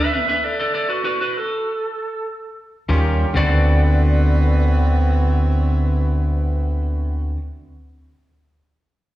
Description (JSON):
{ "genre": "blues", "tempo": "free time", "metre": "none", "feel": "none", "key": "D mixolydian", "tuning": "A4 = 442 Hz", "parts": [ { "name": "lightly driven lead guitar", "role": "melody", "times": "0.0-7.4 s", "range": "F#4 to E5", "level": "-22 LUFS", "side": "right 1 dB", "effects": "plate reverb, slapback echo" }, { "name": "clean lap steel guitar", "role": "second line", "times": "0.0-7.4 s", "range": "D4 to Bb4", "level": "-30 LUFS", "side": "right 3 dB", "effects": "plate reverb, slapback echo" }, { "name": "electric guitar at the edge of break-up", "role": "riff", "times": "2.9-7.4 s", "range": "D3 to B4", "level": "-24 LUFS", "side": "left 2 dB", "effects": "slapback echo" }, { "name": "dark horn section", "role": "stabs", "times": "2.9-7.4 s", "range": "G3 to B4", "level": "-27 LUFS", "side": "right 4 dB", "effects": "slapback echo" }, { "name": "fingered electric bass", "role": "bass", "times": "2.9-7.4 s", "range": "D2 to Eb2", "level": "-16 LUFS", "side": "equal", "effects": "none" } ], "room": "light reverb", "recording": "live gig heard through the venue's PA, recital hall reverb", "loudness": "-16 LUFS", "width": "side -15 dB against mid", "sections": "0.0-3.4 A section; 3.4-7.1 B section", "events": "stop 0.0-2.9", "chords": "0.0 D5; 2.9 Eb9; 3.4 D13" }